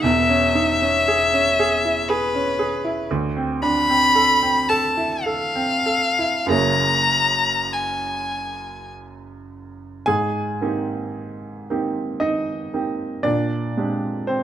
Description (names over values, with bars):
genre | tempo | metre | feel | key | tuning
classical, impressionist duo for violin and grand piano | 46-60 BPM | 3/4 | rubato | unclear | A4 = 440 Hz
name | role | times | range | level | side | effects
rich violin | melody | 0.0-8.9 s | B4 to Cb6 | -18 LUFS | left 2 dB | none
clear grand piano | accompaniment | 0.0-14.4 s | E1 to Ab5 | -22 LUFS | right 2 dB | none
room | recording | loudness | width
moderate recital hall reverb, RT60 1.5 s | close, detailed microphones | -18 LUFS | side -10 dB against mid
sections
0.0-10.1 A section; 10.1-14.4 B section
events
none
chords
0.0 E6; 3.1 Dm9; 6.5 Gb9; 10.1 Abmaj9; 13.2 Bb13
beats
| 0.04 1.07 2.09 | 3.10 4.16 5.25 | 6.51 7.74 8.91 | 10.07 11.15 12.22 | 13.25 14.29